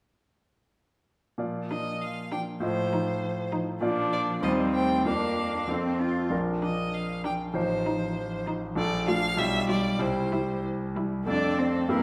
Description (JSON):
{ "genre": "quick classical-period movement for piano quartet", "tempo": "97 BPM", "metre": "2/4", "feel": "straight", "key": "Bb major, F major from 8.8 s", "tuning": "A4 = 440 Hz", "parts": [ { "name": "bright concert grand piano", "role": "accompaniment", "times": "1.4-12.0 s", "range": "A1 to Eb5", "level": "-31 LUFS", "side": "equal", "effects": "none" }, { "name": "clear violin", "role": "melody", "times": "1.7-12.0 s", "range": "Bb4 to G5", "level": "-35 LUFS", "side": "equal", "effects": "none" }, { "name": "warm cello", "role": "second line", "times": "1.7-12.0 s", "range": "F3 to F4", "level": "-36 LUFS", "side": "equal", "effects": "none" }, { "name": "dark viola", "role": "accompaniment", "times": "1.7-12.0 s", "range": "C4 to A4", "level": "-34 LUFS", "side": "equal", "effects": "none" } ], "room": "wet recital hall reverb, RT60 1.3 s", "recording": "none", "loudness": "-28 LUFS", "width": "mono", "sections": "1.4-11.3 A section", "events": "none", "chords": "1.4 Bb; 2.6 F7/A; 3.8 Bb; 4.4 Cm/Eb; 5.1 Bb/F; 5.7 F; 6.3 Bb; 7.6 F7/A; 8.8 Bbmaj7; 9.4 G7/B; 10.0 C; 11.3 F" }